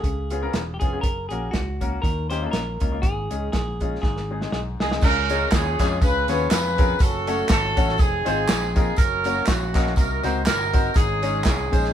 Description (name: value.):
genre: uptempo gospel.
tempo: 121 BPM.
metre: 4/4.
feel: swing 56% on 8ths.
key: Db major.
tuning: A4 = 440 Hz.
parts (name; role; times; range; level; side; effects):
clean electric guitar; melody; 0.0-5.0 s; Gb4 to C5; -31 LUFS; equal; none.
clear baby grand piano; accompaniment; 0.0-11.9 s; Ab2 to Eb5; -28 LUFS; left 4 dB; none.
fingered electric bass; bass; 0.0-11.9 s; Fb1 to F2; -28 LUFS; equal; none.
warm soul drum kit; drums; 0.0-11.9 s; crash cymbal, hi-hat, kick drum, snare drum; -22 LUFS; equal; none.
warm horn section; melody; 4.8-11.9 s; Bb3 to Db5; -24 LUFS; right 2 dB; none.
tambourine and handclaps; percussion; 5.0-11.8 s; none; -32 LUFS; right 2 dB; none.
room: light reverb.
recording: band playing live in one room.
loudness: -20 LUFS.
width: side -10 dB against mid.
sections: 0.0-5.0 A section; 5.0-11.9 B section.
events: drum fill 4.0-5.0.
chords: 0.0 Db7; 1.0 Gb; 2.0 Eb7(no3); 3.0 Absus4; 4.0 Ab; 5.0 Db; 6.0 Db7; 7.0 Gbm; 8.0 Fm7; 9.0 Gb; 10.0 Cm7b5; 11.0 Absus4.